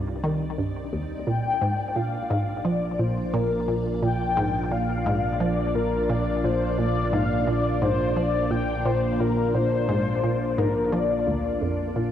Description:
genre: ambient, sequencer-driven space music.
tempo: 87 BPM.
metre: 4/4.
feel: straight.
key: unclear.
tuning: A4 = 440 Hz.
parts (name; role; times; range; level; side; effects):
string machine, full ensemble; sustained chords; 0.0-12.1 s; G3 to D5; -29 LUFS; right 1 dB; ensemble chorus, cassette tape.
resonant blip pluck; riff; 0.0-12.1 s; D2 to F3; -27 LUFS; right 1 dB; chorus, cassette tape, ping-pong delay.
analog drone; bass; 0.0-12.1 s; Bb1 to C2; -30 LUFS; right 1 dB; chorus.
mellow horn-like synth lead; melody; 1.3-12.0 s; Bb4 to G5; -27 LUFS; left 4 dB; ensemble chorus, cassette tape, ping-pong delay.
room: wet lush hall reverb, RT60 2.1 s.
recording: home recording on cassette.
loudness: -22 LUFS.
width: side -10 dB against mid.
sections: 0.0-12.1 A section.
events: fade-in on string machine 0.0-12.1.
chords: 0.0 Cm; 1.3 Bb.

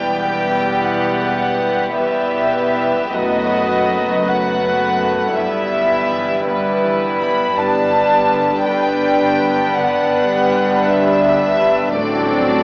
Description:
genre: classical.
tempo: 54 BPM (dotted quarters).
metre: 12/8.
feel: rubato.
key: E minor.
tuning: A4 = 441 Hz.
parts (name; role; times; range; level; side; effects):
warm symphonic violin section; melody; 0.0-12.6 s; B4 to B5; -19 LUFS; equal; none.
warm studio violin section; second line; 0.0-12.6 s; D4 to B4; -18 LUFS; equal; none.
warm studio viola section; accompaniment; 0.0-12.6 s; F#3 to C4; -20 LUFS; equal; none.
concert harp; arpeggios; 0.0-12.6 s; F#2 to B4; -26 LUFS; left 1 dB; none.
dark symphonic double bass section; bass; 0.0-12.6 s; E1 to A1; -33 LUFS; equal; none.
warm symphonic cello section; bass; 0.0-12.6 s; E2 to A2; -26 LUFS; equal; none.
room: wet scoring stage reverb, RT60 1.6 s.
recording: worn, warbling old tape, cassette tape, warbly pitch drift, small speaker sound.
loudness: -14 LUFS.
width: side -26 dB against mid.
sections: 0.0-12.6 A section.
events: none.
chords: 0.0 Em; 3.1 B7/F#; 5.4 Em/G; 7.6 G; 12.0 D7/A.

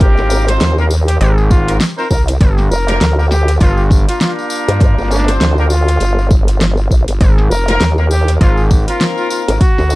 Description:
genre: glitch hop.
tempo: 100 BPM.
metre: 4/4.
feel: swing 58% on 16ths.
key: unclear.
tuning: A4 = 443 Hz.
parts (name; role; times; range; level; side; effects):
warm trumpet; melody; 0.0-10.0 s; D4 to Bb4; -20 LUFS; left 1 dB; tape echo.
clear horn section; stabs; 0.0-9.6 s; Bb3 to C5; -21 LUFS; left 1 dB; sidechain pumping, tape echo.
vowel-sweep wobble bass; bass; 0.0-10.0 s; F1 to G2; -13 LUFS; equal; chorus.
electronic kick drum; drums; 0.0-9.7 s; none; -11 LUFS; equal; none.
pop drum kit; drums; 0.0-9.9 s; hi-hat, snare drum; -18 LUFS; equal; none.
tambourine; percussion; 0.0-10.0 s; none; -29 LUFS; left 3 dB; none.
gritty driven synth bass; bass; 1.2-8.9 s; G1 to Ab1; -13 LUFS; equal; distortion, tube saturation.
room: little or no reverb.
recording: dark, warm production.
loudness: -10 LUFS.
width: side -19 dB against mid.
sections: 0.0-10.0 A section.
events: none.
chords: 0.0 Ab6; 2.4 Gm7; 7.2 Ab6.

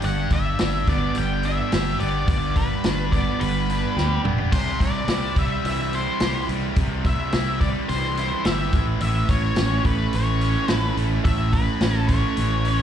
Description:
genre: classic rock.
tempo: 107 BPM.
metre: 4/4.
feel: straight.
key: unclear.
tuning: A4 = 440 Hz.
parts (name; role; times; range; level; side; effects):
crunchy overdriven guitar; riff; 0.0-12.8 s; G2 to G4; -27 LUFS; right 10 dB; slapback echo.
tight distorted guitar; riff; 0.0-12.8 s; G2 to A4; -30 LUFS; left 14 dB; distortion, slapback echo.
fingered electric bass; bass; 0.0-12.8 s; E1 to D2; -24 LUFS; equal; none.
vintage drum kit; drums; 0.0-12.8 s; crash cymbal, hi-hat, kick drum, snare drum, toms; -24 LUFS; equal; none.
octave-fuzz lead guitar; melody; 0.1-12.8 s; B4 to G5; -28 LUFS; left 2 dB; distortion, slapback echo.
room: small room ambience.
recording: live gig heard through the venue's PA, club reverb.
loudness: -20 LUFS.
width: side -9 dB against mid.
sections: 0.0-12.8 A section.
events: drum fill 4.0-4.5.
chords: 0.0 G; 4.5 C; 8.7 A.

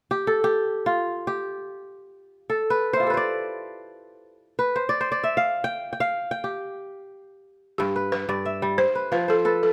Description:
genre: west african traditional, West African string and xylophone music.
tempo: free time.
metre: none.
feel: none.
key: G mixolydian.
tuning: A4 = 440 Hz.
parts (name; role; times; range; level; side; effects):
kora; arpeggios; 0.1-9.7 s; G2 to G5; -26 LUFS; equal; none.
balafon; melody; 7.8-9.7 s; G4 to C5; -26 LUFS; equal; none.
room: light reverb.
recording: close, detailed microphones.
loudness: -25 LUFS.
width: mono.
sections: 0.0-7.8 A section; 7.8-9.7 B section.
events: kora solo 0.0-7.8.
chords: 0.0 G; 8.8 F.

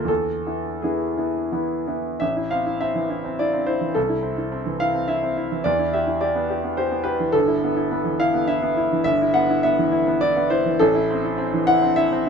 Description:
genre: classical, romantic character piece for solo piano.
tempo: 81-109 BPM.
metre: 3/4.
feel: rubato.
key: A minor, E minor from 9.1 s.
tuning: A4 = 438 Hz.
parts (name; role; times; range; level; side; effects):
clear grand piano; solo; 0.0-12.3 s; G1 to F#5; -19 LUFS; equal; none.
room: light reverb.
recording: minimal, uncompressed stereo recording.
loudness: -19 LUFS.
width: side -6 dB against mid.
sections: 0.0-2.2 A section; 2.2-12.3 B section.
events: none.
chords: 0.1 E; 2.2 Am; 4.0 Am/C; 5.7 Em; 7.3 Em/G; 10.8 Am.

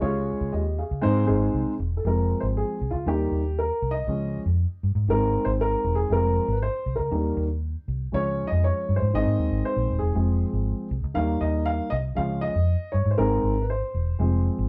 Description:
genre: uptempo 1960s-style soul.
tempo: 118 BPM.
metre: 4/4.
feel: straight.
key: Ab major.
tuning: A4 = 440 Hz.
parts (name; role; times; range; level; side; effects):
dark upright piano; accompaniment; 0.0-14.7 s; Eb3 to F5; -28 LUFS; equal; none.
vintage muted fingered electric bass; bass; 0.0-14.7 s; Eb1 to Ab2; -27 LUFS; equal; none.
room: light reverb.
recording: band playing live in one room.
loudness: -25 LUFS.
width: mono.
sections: 0.0-2.1 A section; 2.1-14.7 B section.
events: upright piano solo 2.1-14.7.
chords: 0.0 Db; 1.0 Ab; 2.1 Fm; 3.1 Eb; 4.1 Db; 5.1 Ab; 6.1 Fm; 7.1 Eb; 8.1 Db; 9.1 Ab; 10.2 Fm; 11.2 Eb; 12.2 Db; 13.2 Ab.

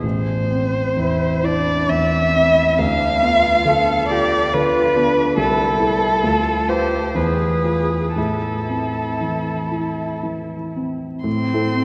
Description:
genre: classical, slow romantic movement for piano trio.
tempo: 56-72 BPM.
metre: 3/4.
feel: rubato.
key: A minor.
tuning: A4 = 435 Hz.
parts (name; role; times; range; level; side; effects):
muted violin; melody; 0.0-11.8 s; A4 to C6; -21 LUFS; equal; none.
muted cello; second line; 0.0-11.8 s; C4 to A4; -29 LUFS; equal; none.
dark baby grand piano; accompaniment; 0.0-11.8 s; A1 to B4; -23 LUFS; equal; none.
room: wet church reverb, RT60 3.2 s.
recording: none.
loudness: -19 LUFS.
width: mono.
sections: 0.0-11.3 A section.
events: none.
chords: 0.0 Am; 2.8 Bdim/D; 5.4 Am/C; 6.2 Bm7b5/D; 7.2 E; 8.2 Am.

